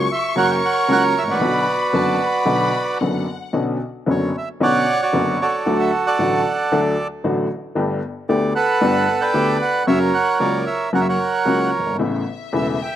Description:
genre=tango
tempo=114 BPM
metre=4/4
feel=rubato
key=B minor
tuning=A4 = 440 Hz
part: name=bandoneon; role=melody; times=0.0-13.0 s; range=F#4 to G5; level=-18 LUFS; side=right 3 dB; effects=slapback echo
part: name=rich studio violin section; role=second line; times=0.0-3.5, 12.0-13.0 s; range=E5 to C#6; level=-27 LUFS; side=left 6 dB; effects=slapback echo
part: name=warm upright piano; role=accompaniment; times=0.0-12.8 s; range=E1 to G4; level=-20 LUFS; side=left 2 dB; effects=none
room=little or no reverb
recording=recorded outdoors, with no room sound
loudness=-17 LUFS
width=side -11 dB against mid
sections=0.0-3.5 A section; 3.5-13.0 A section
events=none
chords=0.0 F#; 1.4 Bm; 3.5 Bmadd9; 5.7 D; 7.8 Gadd9; 9.9 F#; 12.0 Aadd9

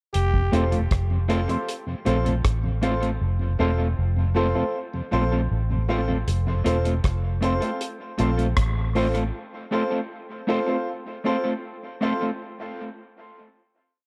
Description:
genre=dub reggae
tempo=78 BPM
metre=4/4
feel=straight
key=F major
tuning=A4 = 440 Hz
part: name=growling trombone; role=second line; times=0.1-0.7 s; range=G4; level=-35 LUFS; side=equal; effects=dub echo
part: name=cloth-damped thuddy drum kit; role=drums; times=0.1-9.3 s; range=hi-hat, kick drum, rim click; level=-29 LUFS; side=equal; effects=none
part: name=vintage muted fingered electric bass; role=bass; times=0.2-9.3 s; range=E1 to Bb1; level=-26 LUFS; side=equal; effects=none
part: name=mellow tonewheel organ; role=accompaniment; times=0.3-6.6 s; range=F2 to F4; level=-34 LUFS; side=equal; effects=none
part: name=mellow electric guitar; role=accompaniment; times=0.5-12.3 s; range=A3 to A4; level=-31 LUFS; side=equal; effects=dub echo
part: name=clear upright piano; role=stabs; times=0.5-12.2 s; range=C4 to C5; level=-31 LUFS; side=equal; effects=dub echo
room=light reverb, studio ambience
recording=none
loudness=-24 LUFS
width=mono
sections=0.1-12.4 A section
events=part muted 3.2-6.3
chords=0.1 F

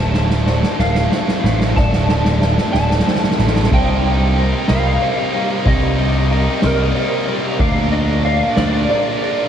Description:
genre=post-rock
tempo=62 BPM (dotted quarters)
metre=6/8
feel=straight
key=C dorian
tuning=A4 = 440 Hz
part: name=electric slide guitar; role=melody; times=0.0-9.5 s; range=Bb4 to A5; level=-23 LUFS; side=equal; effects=ensemble chorus, tape echo
part: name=ethereal airy pad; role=sustained chords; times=0.3-9.5 s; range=D3 to Bb5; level=-28 LUFS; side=left 3 dB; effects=none
part: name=felt-muted upright piano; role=arpeggios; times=0.0-9.5 s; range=Bb4 to D6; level=-27 LUFS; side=right 2 dB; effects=lush chorus, tape echo
part: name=twelve-string electric guitar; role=arpeggios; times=0.0-9.5 s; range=C2 to F4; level=-26 LUFS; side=equal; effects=none
part: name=distorted electric guitar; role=riff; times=0.0-9.5 s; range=C2 to Bb4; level=-22 LUFS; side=right 1 dB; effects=overdrive
part: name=growling picked electric bass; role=bass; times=0.0-8.8 s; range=D1 to D2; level=-17 LUFS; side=equal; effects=overdrive
part: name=soft-mallet drum kit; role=drums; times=0.1-9.4 s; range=crash cymbal, kick drum, ride cymbal, snare drum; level=-20 LUFS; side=equal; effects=none
room=moderate cathedral reverb, RT60 5.0 s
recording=dreamy mix soaked in reverb, studio ambience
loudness=-14 LUFS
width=side -9 dB against mid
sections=0.0-3.7 A section; 3.7-9.5 B section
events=build-up 0.0-3.7; drum fill 0.0-3.7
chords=0.0 Dm7; 3.7 Cm7; 7.6 Bb7/D

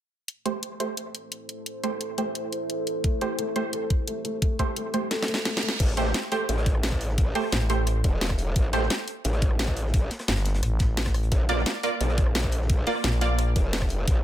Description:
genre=dark technical drum and bass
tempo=174 BPM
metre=4/4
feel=straight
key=A phrygian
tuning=A4 = 440 Hz
part: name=deep dark ambient pad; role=sustained chords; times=1.3-5.8 s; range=A3 to C5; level=-33 LUFS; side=equal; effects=chorus, built-in reverb, sidechain pumping
part: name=drum and bass drum kit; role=drums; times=0.3-14.1 s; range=crash cymbal, hi-hat, rim click, snare drum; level=-29 LUFS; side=equal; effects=none
part: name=orchestra-hit-like synth stab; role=stabs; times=0.5-8.9, 11.5-14.2 s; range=A3 to D5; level=-28 LUFS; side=right 3 dB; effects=built-in reverb, cassette tape, tape echo
part: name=felt-muted upright piano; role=arpeggios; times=3.0-5.7 s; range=A3 to A4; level=-34 LUFS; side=left 3 dB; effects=sidechain pumping, tape echo
part: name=electronic kick drum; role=drums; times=3.0-14.1 s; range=none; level=-24 LUFS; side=equal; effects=none
part: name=reverse cymbal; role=sound effects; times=5.3-5.8 s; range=none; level=-35 LUFS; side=right 6 dB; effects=none
part: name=growl bass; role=bass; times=5.8-14.2 s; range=E1 to Bb1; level=-26 LUFS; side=equal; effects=chorus, tube saturation
part: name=crunchy breakbeat drum kit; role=drums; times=5.8-14.2 s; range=hi-hat, snare drum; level=-41 LUFS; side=equal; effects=none
part: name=growling FM bass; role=bass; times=7.5-8.0, 10.3-13.5 s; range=G1 to Bb1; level=-24 LUFS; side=equal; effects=none
room=light reverb, small room ambience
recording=none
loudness=-23 LUFS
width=side -12 dB against mid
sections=0.3-5.8 A section; 5.8-14.2 B section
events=kick drops out 5.1-5.8; drum fill 5.1-5.8; reverse cymbal 5.3-5.8; drop 5.8-14.2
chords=0.3 Am7; 11.3 Bb

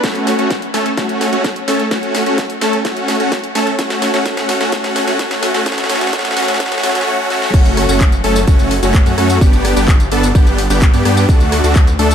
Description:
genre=EDM, festival progressive house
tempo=128 BPM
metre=4/4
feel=straight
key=unclear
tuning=A4 = 439 Hz
part: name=supersaw chords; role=riff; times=0.0-12.1 s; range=A3 to A4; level=-15 LUFS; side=equal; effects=sidechain pumping, ping-pong delay
part: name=electronic kick drum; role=drums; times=0.0-11.8 s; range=none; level=-12 LUFS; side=equal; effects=high-pass filter on kick, studio reverb
part: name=house drum kit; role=drums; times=0.0-12.1 s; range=crash cymbal, handclaps, hi-hat, rim click, snare drum, tambourine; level=-21 LUFS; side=equal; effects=high-pass filter on snare, studio reverb, high-pass filter on hats, high-pass filter on cymbals, high-pass filter on perc
part: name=wide detuned saw bass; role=bass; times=7.5-12.1 s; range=F#1 to G2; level=-16 LUFS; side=equal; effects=chorus, sidechain pumping
room=light reverb, digital ambience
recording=dark, warm production, high-pass filter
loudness=-12 LUFS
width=side -8 dB against mid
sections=0.0-7.5 A section; 7.5-12.1 B section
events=build-up 0.0-7.5; drum fill 0.0-7.1, 7.3; drop 7.5-12.1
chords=0.0 A6; 7.5 F#m; 9.4 G; 11.3 D

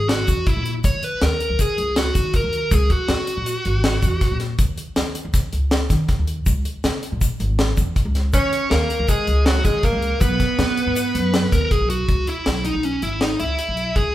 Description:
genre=progressive instrumental, band music in an uneven meter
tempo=160 BPM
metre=5/4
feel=straight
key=C# dorian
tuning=A4 = 440 Hz
part: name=dark smooth lead guitar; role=melody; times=0.0-4.4, 8.3-14.1 s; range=C#4 to C#5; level=-23 LUFS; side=equal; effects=overdrive
part: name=upright bass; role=bass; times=0.0-14.1 s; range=G#1 to D#3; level=-23 LUFS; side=equal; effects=none
part: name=deep reggae drum kit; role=drums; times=0.1-14.0 s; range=hi-hat, kick drum, snare drum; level=-21 LUFS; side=equal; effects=none
part: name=tube shaker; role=percussion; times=0.3-11.8 s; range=none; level=-35 LUFS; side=left 6 dB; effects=none
part: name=bright alto saxophone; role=second line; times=8.3-11.7 s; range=F#3 to C#4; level=-24 LUFS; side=right 3 dB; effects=none
room=moderate large studio reverb, RT60 1.2 s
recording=band playing live in one room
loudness=-18 LUFS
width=side -14 dB against mid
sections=0.0-12.1 A section; 12.1-14.1 B section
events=none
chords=0.0 C#m (rootless); 0.8 D#7(no3); 2.7 C#m; 4.6 C#sus2; 6.5 C#5; 8.3 D#5; 10.2 B5; 12.1 C#m7

